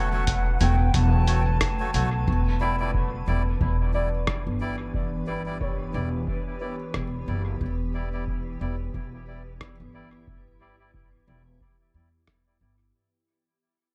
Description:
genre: ambient dub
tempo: 90 BPM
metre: 4/4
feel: swing 57% on 16ths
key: E dorian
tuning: A4 = 441 Hz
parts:
  - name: mellow hollow silver concert flute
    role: melody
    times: 0.0-1.9 s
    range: F#5 to A5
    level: -35 LUFS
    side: equal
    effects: dub echo
  - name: granular cloud pad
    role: sustained chords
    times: 0.0-12.9 s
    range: C#3 to B4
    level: -39 LUFS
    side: equal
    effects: built-in reverb
  - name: felt-muted upright piano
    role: arpeggios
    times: 0.0-9.7 s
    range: B4 to B5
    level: -40 LUFS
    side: equal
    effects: dub echo
  - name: melodica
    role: stabs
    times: 0.0-12.8 s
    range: G3 to D5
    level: -37 LUFS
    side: equal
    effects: low-pass filter, dub echo
  - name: upright bass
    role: bass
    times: 0.0-12.9 s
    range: E1 to E2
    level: -28 LUFS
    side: equal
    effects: none
  - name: electronic kick drum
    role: drums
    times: 0.3-12.4 s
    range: none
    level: -33 LUFS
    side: equal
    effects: none
  - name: lo-fi sampler-style drum kit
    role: drums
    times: 0.3-12.4 s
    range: hi-hat, rim click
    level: -33 LUFS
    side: equal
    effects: overdrive, dub echo
room: light reverb, studio reverb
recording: none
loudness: -26 LUFS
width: mono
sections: 0.0-2.3 A section; 2.3-12.9 B section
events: fade-out 2.3-12.9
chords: 0.0 F#m/E; 2.3 Em7

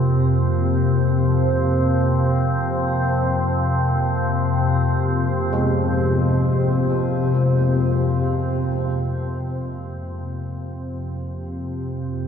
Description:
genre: dark ambient drone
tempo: free time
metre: none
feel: none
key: F minor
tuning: A4 = 440 Hz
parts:
  - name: carillon bells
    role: arpeggios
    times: 0.0-9.6 s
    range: F3 to F4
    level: -32 LUFS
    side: right 1 dB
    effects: ping-pong delay, shimmer reverb
  - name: organ-like drone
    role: drone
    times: 0.0-12.3 s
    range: F2 to C3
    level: -19 LUFS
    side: left 1 dB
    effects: ensemble chorus, built-in reverb
  - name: bronze singing bowl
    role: texture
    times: 0.0-9.5 s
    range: Bb3 to Bb4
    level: -37 LUFS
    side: right 1 dB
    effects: none
room: wet huge ambient reverb, RT60 7.0 s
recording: none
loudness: -18 LUFS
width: side -7 dB against mid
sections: 0.0-9.4 A section; 9.4-12.3 B section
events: fade-out on church bells 0.0-9.4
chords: 0.0 Fm; 9.4 F5

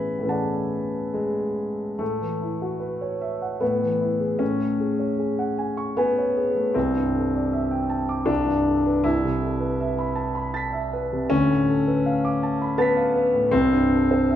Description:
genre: classical, impressionist solo piano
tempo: 67-82 BPM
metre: 3/4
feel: rubato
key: unclear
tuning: A4 = 441 Hz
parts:
  - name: warm concert grand piano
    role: solo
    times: 0.0-14.4 s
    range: C2 to B6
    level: -21 LUFS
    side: equal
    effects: none
room: moderate recital hall reverb, RT60 1.7 s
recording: minimal, uncompressed stereo recording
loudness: -21 LUFS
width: side -11 dB against mid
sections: 0.0-2.0 A section; 2.0-14.4 B section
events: none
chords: 0.0 Amaj9; 2.0 A69; 3.6 E/A; 4.4 F#madd9/A; 6.8 C69; 8.3 Gadd9/C; 9.0 Amadd9/C; 11.3 Dm6; 13.5 C5

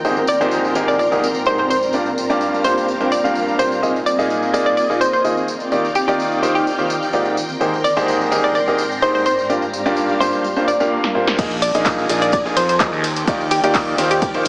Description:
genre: piano house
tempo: 127 BPM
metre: 4/4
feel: straight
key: unclear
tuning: A4 = 440 Hz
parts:
  - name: string machine, violins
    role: sustained chords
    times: 0.0-14.5 s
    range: Bb3 to G6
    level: -26 LUFS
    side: equal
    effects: ensemble chorus, sidechain pumping
  - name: clear concert grand piano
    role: riff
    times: 0.0-14.5 s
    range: G2 to F5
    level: -19 LUFS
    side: equal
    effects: sidechain pumping
  - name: tambourine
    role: percussion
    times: 0.0-14.5 s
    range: none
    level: -32 LUFS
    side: equal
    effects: none
  - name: granular cloud pad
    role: texture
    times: 0.0-10.9 s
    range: Ab2 to Eb5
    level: -25 LUFS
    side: equal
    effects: built-in reverb, sidechain pumping
  - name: hollow square pluck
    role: melody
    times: 0.3-14.5 s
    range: G4 to D5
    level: -20 LUFS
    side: equal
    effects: chorus, tape echo
  - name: swell and sub drop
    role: sound effects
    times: 10.5-13.3 s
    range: none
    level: -28 LUFS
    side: equal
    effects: none
  - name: punchy analog drum machine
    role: drums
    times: 11.0-14.5 s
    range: crash cymbal, handclaps, hi-hat, shaker, snare drum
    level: -21 LUFS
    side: equal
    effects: low-pass filter on hats, low-pass filter on perc, low-pass filter on snare, low-pass filter on cymbals
  - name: fuzz fingered electric bass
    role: bass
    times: 11.4-14.5 s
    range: Bb1 to F2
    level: -24 LUFS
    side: equal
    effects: overdrive, sidechain pumping
  - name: breakbeat sampler-style drum kit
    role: drums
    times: 11.4-14.5 s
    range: hi-hat, ride cymbal, snare drum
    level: -31 LUFS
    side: equal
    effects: none
  - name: electronic kick drum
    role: drums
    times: 11.4-14.3 s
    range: none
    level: -22 LUFS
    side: equal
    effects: none
room: wet lush hall reverb, RT60 2.1 s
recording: heavily compressed radio sound, small speaker sound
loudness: -15 LUFS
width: side -26 dB against mid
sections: 0.0-11.4 A section; 11.4-14.5 B section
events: swell 10.5-11.4; drum fill 11.0-11.4; drop 11.4-14.5; impact 11.4-13.3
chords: 0.0 Abmaj9; 1.9 Gm7; 3.8 Bb7sus4; 5.5 Abmaj9; 9.5 Gm7; 11.4 Bb7sus4; 13.0 Ebmaj9

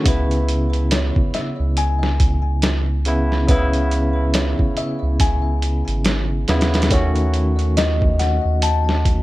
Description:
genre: trip hop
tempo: 70 BPM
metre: 4/4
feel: swing 58% on 16ths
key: C# minor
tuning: A4 = 440 Hz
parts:
  - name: barky tine electric piano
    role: accompaniment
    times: 0.0-9.2 s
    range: C#3 to F#4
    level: -23 LUFS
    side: equal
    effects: harmonic tremolo, tape echo
  - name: music box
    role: arpeggios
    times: 0.1-9.2 s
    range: B4 to A5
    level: -26 LUFS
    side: left 4 dB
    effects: vintage 12-bit sampler grit, tape echo
  - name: soft dub sub bass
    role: bass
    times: 0.1-9.2 s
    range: G#1 to D#2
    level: -19 LUFS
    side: equal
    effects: none
  - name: trip hop sampler-style drum kit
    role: drums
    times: 0.1-9.2 s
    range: hi-hat, kick drum, snare drum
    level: -20 LUFS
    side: equal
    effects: none
room: digital ambience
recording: none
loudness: -16 LUFS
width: side -17 dB against mid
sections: 0.1-9.2 A section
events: none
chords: 0.1 C#m7; 6.9 D#m7b5

